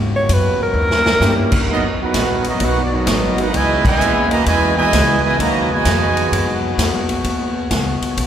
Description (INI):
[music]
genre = jazz, big band swing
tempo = 130 BPM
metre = 4/4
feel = swing 66% on 8ths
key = G# minor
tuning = A4 = 440 Hz
[part]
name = warm saxophone section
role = sustained chords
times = 0.0-8.3 s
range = B2 to D#5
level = -25 LUFS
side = left 2 dB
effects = none
[part]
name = upright bass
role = bass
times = 0.0-8.3 s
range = G#1 to G#2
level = -20 LUFS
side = equal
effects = none
[part]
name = clear alto saxophone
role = melody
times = 0.2-1.6 s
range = A#4 to C#5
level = -20 LUFS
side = equal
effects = none
[part]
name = swinging big-band drum kit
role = drums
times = 0.3-8.3 s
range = crash cymbal, hi-hat, kick drum, ride cymbal, snare drum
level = -21 LUFS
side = equal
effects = none
[part]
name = warm grand piano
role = accompaniment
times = 1.2-1.5 s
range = A#3 to G4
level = -27 LUFS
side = equal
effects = none
[part]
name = warm trumpet section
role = melody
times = 1.7-6.6 s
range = B3 to A#5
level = -19 LUFS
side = right 2 dB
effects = none
[part]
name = brilliant trombone section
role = second line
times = 1.7-6.6 s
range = B2 to F#4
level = -21 LUFS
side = right 3 dB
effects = none
[sound]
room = wet cathedral reverb, RT60 4.8 s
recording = recorded in a church or concert hall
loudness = -14 LUFS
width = side -9 dB against mid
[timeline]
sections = 0.0-1.7 A section; 1.7-8.3 B section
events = alto saxophone solo 0.0-1.7; drum fill 0.8-1.2; band accent 3.8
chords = 0.0 G#m9; 0.8 D#7b9; 1.7 G#m9; 3.5 C#m9; 5.4 G#m9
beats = 0.29 0.76 1.22 | 1.68 2.14 2.61 3.07 | 3.53 4.00 4.46 4.92 | 5.39 5.85 6.31 6.78 | 7.24 7.70 8.17